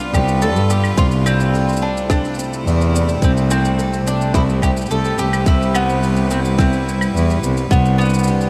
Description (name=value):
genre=folktronica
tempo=107 BPM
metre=4/4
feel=straight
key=C major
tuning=A4 = 440 Hz
part: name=mandolin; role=melody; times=0.0-8.5 s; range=B3 to A4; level=-25 LUFS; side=equal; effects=analog delay
part: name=clear string quartet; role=sustained chords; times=0.0-8.5 s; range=C3 to B4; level=-27 LUFS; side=equal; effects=none
part: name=picked steel-string acoustic guitar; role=arpeggios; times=0.0-8.5 s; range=C3 to A4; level=-28 LUFS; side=equal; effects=subtle chorus, analog delay
part: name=soft brush drum kit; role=drums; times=0.0-8.5 s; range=claves, hi-hat, rim click, shaker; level=-31 LUFS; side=equal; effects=none
part: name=rich cello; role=bass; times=0.1-8.5 s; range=C2 to G2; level=-20 LUFS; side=equal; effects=none
part: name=electronic kick drum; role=drums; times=0.1-7.8 s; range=none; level=-18 LUFS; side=equal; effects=none
room=moderate lush hall reverb, RT60 1.9 s, small room reverb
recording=dreamy mix soaked in reverb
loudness=-17 LUFS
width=mono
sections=0.0-8.5 A section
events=none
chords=0.0 G7/C; 1.0 Dm7/C; 3.2 Am7/C; 5.5 Cmaj7; 7.7 G/C